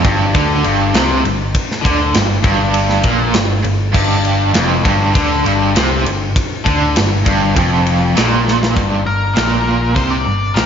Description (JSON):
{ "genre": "hard rock", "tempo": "100 BPM", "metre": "4/4", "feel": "straight", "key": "G minor", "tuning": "A4 = 440 Hz", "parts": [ { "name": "cranked stack guitar", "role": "riff", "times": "0.0-10.7 s", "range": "F2 to D3", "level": "-20 LUFS", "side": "left 9 dB", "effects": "overdrive, slapback echo" }, { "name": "overdriven electric guitar", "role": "riff", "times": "0.0-10.7 s", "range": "F2 to D3", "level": "-19 LUFS", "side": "right 7 dB", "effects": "tremolo, slapback echo" }, { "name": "tight distorted guitar", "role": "riff", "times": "0.0-8.7 s", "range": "F2 to D3", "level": "-21 LUFS", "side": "right 2 dB", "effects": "distortion, slapback echo" }, { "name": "overdriven picked electric bass", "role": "bass", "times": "0.0-10.7 s", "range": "F1 to D2", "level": "-18 LUFS", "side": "equal", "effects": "none" }, { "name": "tight metal drum kit", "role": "drums", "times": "0.0-10.7 s", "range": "crash cymbal, hi-hat, kick drum, ride cymbal, snare drum", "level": "-17 LUFS", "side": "equal", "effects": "none" }, { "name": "nasal lead guitar with a parked wah", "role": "melody", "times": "9.1-10.7 s", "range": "Bb4 to D5", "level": "-19 LUFS", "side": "left 3 dB", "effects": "overdrive" } ], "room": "moderate lush hall reverb, RT60 1.9 s", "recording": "big arena sound, nothing above 7.5 kHz", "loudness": "-12 LUFS", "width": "side -8 dB against mid", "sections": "0.0-8.8 A section; 8.8-10.7 B section", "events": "drum fill 8.5-8.8", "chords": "0.0 Gm" }